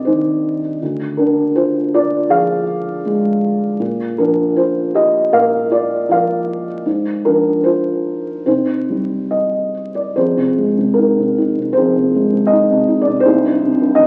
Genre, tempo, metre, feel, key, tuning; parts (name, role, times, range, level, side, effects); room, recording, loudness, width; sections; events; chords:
classical, lyrical solo piano; 68-82 BPM; 4/4; rubato; A4 = 440 Hz
felt-muted upright piano; solo; 0.0-14.1 s; C2 to F5; -16 LUFS; equal
wet recital hall reverb, RT60 1.5 s; very old 78 rpm record, vinyl crackle; -16 LUFS; mono
0.0-10.2 A section; 10.2-14.1 B section
0.0 Cmadd9; 0.8 Ddim; 3.8 Bb; 6.9 Fm/Ab; 8.5 Cm; 10.2 Fm7; 13.2 Cm